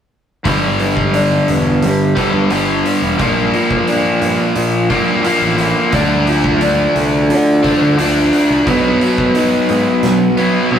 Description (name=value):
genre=quiet-loud alternative rock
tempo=88 BPM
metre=4/4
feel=straight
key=G mixolydian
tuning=A4 = 440 Hz
part: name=biting overdriven guitar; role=riff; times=0.4-10.8 s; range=G2 to D4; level=-14 LUFS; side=left 1 dB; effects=spring reverb
part: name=electric guitar through a small old amp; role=arpeggios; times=0.5-10.8 s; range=G2 to D#4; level=-19 LUFS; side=right 1 dB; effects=tremolo
part: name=fuzz fingered electric bass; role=bass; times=0.5-10.3 s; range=E1 to D3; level=-20 LUFS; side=equal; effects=overdrive
part: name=huge arena drum kit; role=drums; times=0.5-10.8 s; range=hi-hat, kick drum, snare drum, toms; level=-22 LUFS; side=right 1 dB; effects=none
room=moderate stone room reverb, RT60 1.2 s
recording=rough rehearsal-room recording, tube saturation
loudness=-12 LUFS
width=side -8 dB against mid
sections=0.5-10.8 A section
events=none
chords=0.5 G; 3.2 Bb; 5.9 Dm; 8.7 B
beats=| 0.46 1.14 1.83 2.51 | 3.20 3.88 4.57 5.25 | 5.93 6.62 7.30 7.99 | 8.67 9.35 10.04 10.72